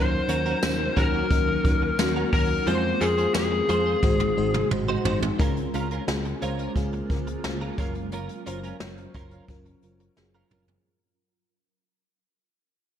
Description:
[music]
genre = 1980s-style pop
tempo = 88 BPM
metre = 4/4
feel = straight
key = Db major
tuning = A4 = 441 Hz
[part]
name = lead guitar through a small cranked amp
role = melody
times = 0.0-4.7 s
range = Ab4 to C5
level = -26 LUFS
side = left 3 dB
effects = overdrive
[part]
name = FM electric piano with soft pad layer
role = accompaniment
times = 0.0-10.9 s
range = Gb3 to Db5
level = -29 LUFS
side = left 1 dB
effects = chorus
[part]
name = granular cloud pad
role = sustained chords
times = 0.0-10.8 s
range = Db3 to Bb4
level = -35 LUFS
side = right 2 dB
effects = built-in reverb
[part]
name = direct-recorded clean electric guitar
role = riff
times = 0.0-10.7 s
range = Db4 to C5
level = -34 LUFS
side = right 4 dB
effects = ensemble chorus, tape echo
[part]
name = fretless electric bass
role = bass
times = 0.0-10.8 s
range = Gb1 to F2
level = -31 LUFS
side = equal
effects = none
[part]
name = jazz brush drum kit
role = drums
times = 0.3-10.8 s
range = hi-hat, kick drum, snare drum, tambourine, toms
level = -27 LUFS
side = equal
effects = gated reverb
[sound]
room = light reverb, small room ambience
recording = none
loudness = -22 LUFS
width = side -9 dB against mid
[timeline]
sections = 0.0-5.4 A section; 5.4-10.9 B section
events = drum fill 4.0-5.4, 10.2-10.9; fade-out 5.4-10.9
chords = 0.0 Ebm7; 2.7 Fm; 4.0 Ab7; 5.4 Db6; 7.8 Gbmaj7

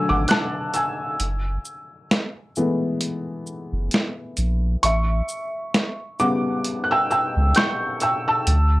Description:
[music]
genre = lo-fi hip hop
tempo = 66 BPM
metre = 4/4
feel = swing 57% on 16ths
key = unclear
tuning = A4 = 441 Hz
[part]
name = felt-muted upright piano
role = accompaniment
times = 0.0-8.8 s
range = C#3 to G6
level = -22 LUFS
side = equal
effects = cassette tape, low-pass filter, plate reverb
[part]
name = warm sub bass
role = bass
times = 0.1-8.8 s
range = F#1 to D2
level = -20 LUFS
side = equal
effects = none
[part]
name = boom bap sampler-style drum kit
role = drums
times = 0.3-8.7 s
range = hi-hat, shaker, snare drum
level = -22 LUFS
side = equal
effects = none
[sound]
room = moderate studio reverb, RT60 0.5 s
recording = cassette tape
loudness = -20 LUFS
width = side -18 dB against mid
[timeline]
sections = 0.0-8.8 A section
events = break 0.0-8.8; felt piano solo 0.0-8.8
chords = 0.0 E9sus4; 1.2 F#m11; 4.8 A7

